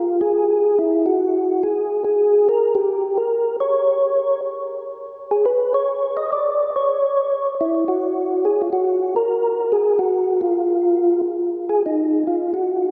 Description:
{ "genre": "jazz", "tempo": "141 BPM", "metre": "4/4", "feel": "swing 65% on 8ths", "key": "F# major", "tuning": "A4 = 440 Hz", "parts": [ { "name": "percussive tonewheel organ", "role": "solo", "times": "0.0-12.9 s", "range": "Eb4 to D#5", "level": "-19 LUFS", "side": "equal", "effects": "slow rotary speaker, chorus vibrato" } ], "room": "wet cathedral reverb, RT60 5.5 s", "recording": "recorded in a church or concert hall", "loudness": "-19 LUFS", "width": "mono", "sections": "0.0-11.4 A section; 11.4-12.9 B section", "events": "tonewheel organ solo 11.4-12.9", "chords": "none" }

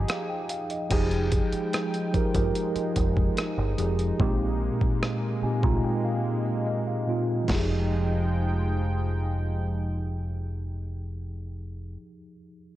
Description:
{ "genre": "contemporary R&B", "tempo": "73 BPM", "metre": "4/4", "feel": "straight", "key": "F minor", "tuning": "A4 = 440 Hz", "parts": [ { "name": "warm analog pad", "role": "sustained chords", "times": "0.0-11.5 s", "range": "F3 to G5", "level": "-34 LUFS", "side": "right 1 dB", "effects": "chorus" }, { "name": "deep dub picked electric bass", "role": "bass", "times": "0.0-12.0 s", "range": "F1 to C2", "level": "-28 LUFS", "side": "equal", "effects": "none" }, { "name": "mellow tine electric piano", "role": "accompaniment", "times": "0.1-12.8 s", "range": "Bb2 to Bb5", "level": "-29 LUFS", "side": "right 1 dB", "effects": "medium stereo tremolo" }, { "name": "dusty soul sampler-style drum kit", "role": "drums", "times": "0.1-7.7 s", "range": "crash cymbal, hi-hat, kick drum, rim click, snare drum", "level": "-28 LUFS", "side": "equal", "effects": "overdrive" } ], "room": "light reverb", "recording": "worn, warbling old tape, cassette tape, warbly pitch drift", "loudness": "-24 LUFS", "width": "side -14 dB against mid", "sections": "0.9-7.5 A section; 7.5-10.8 B section", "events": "tine electric piano fill 5.0-7.5; drums muted 5.8-7.5", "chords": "0.0 Fm9; 4.2 Bb13sus4; 7.5 Fm9" }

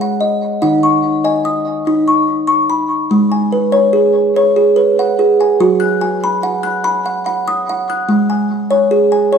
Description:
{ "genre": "world meditative, meditative tuned percussion", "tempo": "72 BPM", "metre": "3/4", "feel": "straight", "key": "G# minor pentatonic", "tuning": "A4 = 440 Hz", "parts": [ { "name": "kalimba", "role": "solo", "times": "0.0-9.4 s", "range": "D#3 to F#6", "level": "-12 LUFS", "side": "equal", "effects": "diffuse ambient delay" } ], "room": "wet echo chamber reverb, RT60 1.6 s, studio ambience", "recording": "none", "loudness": "-12 LUFS", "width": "side -6 dB against mid", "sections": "0.0-3.1 A section; 3.1-9.4 B section", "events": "none", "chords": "0.0 N.C.; 0.6 D#m; 3.1 G#m; 5.6 F#sus24; 8.1 N.C." }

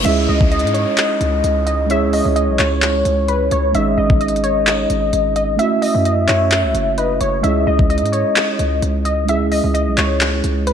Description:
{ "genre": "hip hop, trap", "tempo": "130 BPM", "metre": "4/4", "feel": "half-time", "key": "C# minor", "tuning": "A4 = 439 Hz", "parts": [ { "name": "warbly dusty pluck", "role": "melody", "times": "0.0-10.7 s", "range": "B4 to E5", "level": "-21 LUFS", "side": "equal", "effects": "chorus, analog delay" }, { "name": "mellow tine electric piano", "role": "accompaniment", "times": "0.0-10.7 s", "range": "G#3 to G#4", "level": "-21 LUFS", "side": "right 5 dB", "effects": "none" }, { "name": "hard-hitting 808-style bass", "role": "bass", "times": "0.0-10.7 s", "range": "F#1 to G#2", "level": "-20 LUFS", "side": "left 1 dB", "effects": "none" }, { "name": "reverse cymbal and downlifter", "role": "sound effects", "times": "0.0-3.7 s", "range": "none", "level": "-28 LUFS", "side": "left 2 dB", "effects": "none" }, { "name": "soft octave-layered synth lead", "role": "second line", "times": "0.1-9.2 s", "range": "C#5 to E5", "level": "-20 LUFS", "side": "left 3 dB", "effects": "chorus, analog delay" }, { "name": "trap drum kit", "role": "drums", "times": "0.1-10.7 s", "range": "crash cymbal, handclaps, hi-hat, kick drum", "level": "-20 LUFS", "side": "left 1 dB", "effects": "overdrive" } ], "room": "moderate plate reverb, RT60 1.7 s, digital ambience", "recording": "dreamy mix soaked in reverb", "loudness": "-14 LUFS", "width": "side -8 dB against mid", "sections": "0.1-10.7 A section", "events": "none", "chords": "0.1 C#m; 3.7 G#sus4; 5.6 F#m7; 7.4 C#m" }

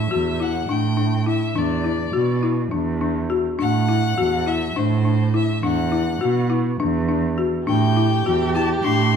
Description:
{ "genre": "contemporary instrumental, chamber music in an uneven meter", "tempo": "206 BPM (eighths)", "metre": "7/8", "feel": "straight", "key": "unclear", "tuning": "A4 = 438 Hz", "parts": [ { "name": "bright violin", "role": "melody", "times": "0.0-9.2 s", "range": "C5 to C6", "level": "-26 LUFS", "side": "left 4 dB", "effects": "none" }, { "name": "dark cello", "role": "bass", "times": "0.0-9.2 s", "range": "E2 to B2", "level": "-21 LUFS", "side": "right 5 dB", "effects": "none" }, { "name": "folk marimba with medium hard mallets", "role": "arpeggios", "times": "0.1-9.2 s", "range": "D4 to F#4", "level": "-22 LUFS", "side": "left 8 dB", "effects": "none" }, { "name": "clear viola", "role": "second line", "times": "7.7-9.2 s", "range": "G4", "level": "-25 LUFS", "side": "right 4 dB", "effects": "none" } ], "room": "moderate recital hall reverb, RT60 1.3 s", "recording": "dark, warm production", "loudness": "-18 LUFS", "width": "side -7 dB against mid", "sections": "0.0-9.2 A section", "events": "none", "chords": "0.0 A5; 1.6 Esus2; 3.6 Am; 5.6 Esus2; 7.7 Am7" }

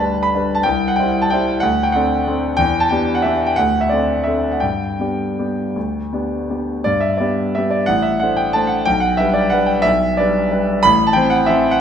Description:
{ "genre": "classical, piano waltz", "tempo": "152-194 BPM", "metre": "3/4", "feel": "rubato", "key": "G major", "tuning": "A4 = 439 Hz", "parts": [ { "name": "clear concert grand piano", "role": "solo", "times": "0.0-11.8 s", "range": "A1 to B5", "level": "-15 LUFS", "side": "equal", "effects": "none" } ], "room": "wet recital hall reverb, RT60 1.5 s", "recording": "minimal, uncompressed stereo recording", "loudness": "-15 LUFS", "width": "side -8 dB against mid", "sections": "0.0-6.9 A section; 6.9-11.8 A section", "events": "none", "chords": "0.0 G; 0.6 C; 1.6 D7; 2.6 Em7; 3.6 D5; 4.6 G; 7.9 D5/A; 8.9 G/B; 10.8 Am" }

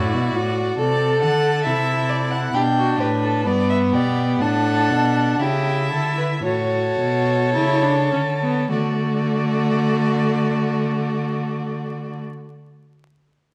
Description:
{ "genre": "classical, baroque-style fugue for string quartet", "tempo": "50-70 BPM", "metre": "4/4", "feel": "straight", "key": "D major", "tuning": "A4 = 441 Hz", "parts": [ { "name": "rich violin", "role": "melody", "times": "0.0-12.2 s", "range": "B4 to G5", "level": "-28 LUFS", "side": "equal", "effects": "none" }, { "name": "rich violin", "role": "second line", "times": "0.0-12.2 s", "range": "F#4 to B4", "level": "-28 LUFS", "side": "equal", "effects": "none" }, { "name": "clear viola", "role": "accompaniment", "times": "0.0-12.2 s", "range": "A3 to A4", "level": "-24 LUFS", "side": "equal", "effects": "none" }, { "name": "clear cello", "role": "bass", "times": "0.0-12.2 s", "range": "G2 to D3", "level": "-26 LUFS", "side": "equal", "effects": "none" } ], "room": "moderate scoring stage reverb, RT60 1.4 s", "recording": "vinyl crackle", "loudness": "-20 LUFS", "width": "mono", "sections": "0.0-8.7 A section; 8.7-13.5 B section", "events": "slowing down 0.0-8.7", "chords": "0.0 D; 0.8 D7/C; 2.5 G; 4.4 A7sus4; 6.4 A; 8.7 D" }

